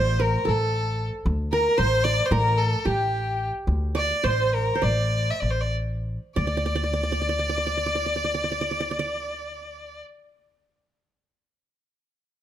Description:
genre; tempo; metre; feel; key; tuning
Turkish makam ensemble; 182-227 BPM (eighths); 9/8; straight; D makam ussak; A4 = 441 Hz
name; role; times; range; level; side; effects
clear violin; melody; 0.0-10.0 s; G4 to E5-27c; -26 LUFS; left 2 dB; none
qanun; second line; 0.0-10.0 s; G4 to E5-30c; -29 LUFS; right 4 dB; none
upright bass; bass; 0.0-10.0 s; A1 to D2; -26 LUFS; equal; none
room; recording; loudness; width
little or no reverb; close, detailed microphones; -22 LUFS; side -11 dB against mid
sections
0.0-6.4 A section; 6.4-9.3 B section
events
slowing down 1.8-6.4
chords
none

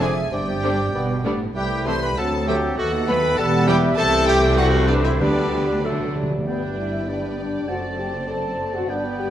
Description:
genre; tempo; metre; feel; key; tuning
quick classical-period movement for symphony orchestra; 98 BPM; 2/4; rubato; G major; A4 = 440 Hz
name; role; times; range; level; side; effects
rich chamber violin section; melody; 0.0-9.3 s; D5 to C6; -29 LUFS; left 4 dB; none
clear oboe; second line; 0.0-9.3 s; A4 to A5; -32 LUFS; right 1 dB; none
large flute ensemble; second line; 0.0-9.3 s; B4 to A5; -31 LUFS; right 1 dB; none
mellow clarinet; second line; 0.0-9.3 s; D4 to D5; -28 LUFS; left 1 dB; none
warm studio violin section; second line; 0.0-9.3 s; G3 to D5; -32 LUFS; left 1 dB; none
mellow bassoon; accompaniment; 0.0-9.3 s; F#3 to C4; -28 LUFS; right 2 dB; none
warm studio viola section; accompaniment; 0.0-9.3 s; D3 to D4; -29 LUFS; right 1 dB; none
dark French horn section; sustained chords; 0.0-9.3 s; A3 to A4; -27 LUFS; left 4 dB; none
bright trumpet; stabs; 0.0-5.8 s; D4 to C5; -26 LUFS; right 1 dB; none
warm chamber cello section; bass; 0.0-9.3 s; C2 to B2; -28 LUFS; right 2 dB; none
warm chamber double bass section; bass; 0.0-9.3 s; E1 to D#2; -27 LUFS; right 2 dB; none
timpani; percussion; 5.2-6.5 s; D3; -28 LUFS; equal; none
room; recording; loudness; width
moderate scoring stage reverb, RT60 1.5 s; none; -18 LUFS; side -11 dB against mid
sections
0.0-6.5 A section; 6.5-9.3 B section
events
timpani fill 5.8-6.5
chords
0.3 Gsus4; 0.9 G; 1.6 Am7/C; 2.2 D7; 2.8 B7/D#; 3.4 Em; 4.0 Am7/C; 5.2 G/D; 5.8 D; 6.5 G; 7.7 D7/F#

